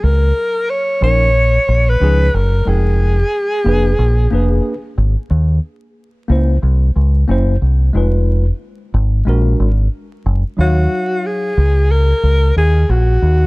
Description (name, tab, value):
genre	hip hop, jazz-hop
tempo	91 BPM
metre	4/4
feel	swing 61% on 16ths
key	Eb minor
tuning	A4 = 438 Hz
part	breathy alto saxophone	melody	0.0-5.0, 10.6-13.5 s	Gb4 to Db5	-17 LUFS	equal	none
part	deep dub fingered electric bass	bass	0.0-13.5 s	F1 to Eb2	-12 LUFS	equal	none
part	tine electric piano	accompaniment	1.0-11.5 s	F3 to G5	-22 LUFS	left 1 dB	medium stereo tremolo
room	small room ambience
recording	vinyl crackle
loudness	-12 LUFS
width	side -24 dB against mid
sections	0.0-13.5 A section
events	none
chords	0.0 Db69; 2.7 Fm11; 4.0 Bb7b9; 5.3 Eb5; 6.6 C7b9; 7.9 Fm7b5; 9.3 Bbaug7; 10.6 Ebm9